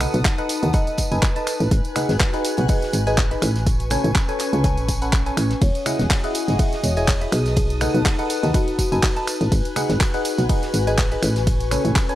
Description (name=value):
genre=piano house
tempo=123 BPM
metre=4/4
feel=swing 55% on 16ths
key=unclear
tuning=A4 = 441 Hz
part: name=dark chamber violin section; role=sustained chords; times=0.0-12.2 s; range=G#4 to F#6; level=-33 LUFS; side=left 2 dB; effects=sidechain pumping
part: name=barking FM electric piano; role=riff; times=0.0-12.2 s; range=C#4 to B5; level=-26 LUFS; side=left 1 dB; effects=phaser, sidechain pumping, analog delay
part: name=solid FM bass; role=bass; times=0.0-11.9 s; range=E1 to D#2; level=-21 LUFS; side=equal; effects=tube saturation, sidechain pumping
part: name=house drum kit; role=drums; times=0.0-12.2 s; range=finger snaps, handclaps, hi-hat, ride cymbal, tambourine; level=-27 LUFS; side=right 1 dB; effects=none
part: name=warm soul drum kit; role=drums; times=0.0-12.1 s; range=hi-hat, snare drum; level=-38 LUFS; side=right 1 dB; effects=none
part: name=congas and tambourine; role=percussion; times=0.0-12.2 s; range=none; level=-32 LUFS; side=right 1 dB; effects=none
part: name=warbly tape-like pad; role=texture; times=0.0-12.2 s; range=C#4 to A5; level=-30 LUFS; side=left 2 dB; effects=chorus, built-in reverb, sidechain pumping
part: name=electronic kick drum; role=drums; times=0.2-12.1 s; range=none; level=-20 LUFS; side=equal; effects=none
part: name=marimba with medium mallets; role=melody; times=0.7-0.9, 5.6-9.4 s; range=F#4 to D#5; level=-30 LUFS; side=left 1 dB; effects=none
room=small room ambience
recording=dry, gritty hardware recording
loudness=-18 LUFS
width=side -14 dB against mid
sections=0.0-12.2 A section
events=none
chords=0.0 B7; 1.7 G#m7; 3.7 Amaj9; 5.6 Emaj9; 7.3 B7; 9.5 G#m7; 11.5 Amaj9